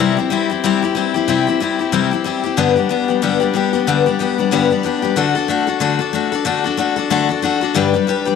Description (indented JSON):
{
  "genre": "rock",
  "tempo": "186 BPM",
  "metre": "4/4",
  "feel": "swing 58% on 8ths",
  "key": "G major",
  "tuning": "A4 = 439 Hz",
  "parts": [
    { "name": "picked steel-string acoustic guitar", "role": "solo", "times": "0.0-8.4 s", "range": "G2 to B4", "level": "-15 LUFS", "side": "left 7 dB", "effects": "slapback echo" }
  ],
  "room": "light reverb, small room ambience",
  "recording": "lossy compression artefacts",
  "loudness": "-15 LUFS",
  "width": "side -6 dB against mid",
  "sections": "0.0-8.4 A section",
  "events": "none",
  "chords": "0.0 C; 2.6 G; 5.2 D; 7.8 G"
}